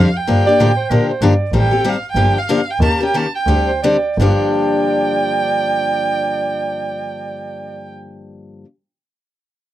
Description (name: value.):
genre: acoustic string swing (jazz manouche).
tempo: 163-192 BPM.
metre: 4/4.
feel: swing 59% on 8ths.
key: G minor.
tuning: A4 = 445 Hz.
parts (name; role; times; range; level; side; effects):
warm violin; melody; 0.0-7.9 s; F5 to A5; -21 LUFS; right 4 dB; none.
picked steel-string acoustic guitar; accompaniment; 0.0-8.7 s; G2 to Bb4; -19 LUFS; left 4 dB; none.
rich double bass; bass; 0.0-4.3 s; G1 to Bb2; -16 LUFS; equal; none.
warm clarinet; second line; 0.5-1.5, 3.7-7.9 s; Bb4 to D5; -20 LUFS; right 4 dB; none.
room: light reverb.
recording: dry, close 1970s-style studio recording.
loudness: -14 LUFS.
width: side -13 dB against mid.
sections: 0.0-1.5 A section; 1.5-4.2 B section; 4.2-7.1 C section.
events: slowing down 1.5-4.2.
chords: 0.3 Gm7; 1.5 Am7b5; 2.2 Gm7; 2.8 Eb7; 3.5 D7sus4; 4.2 Gm7.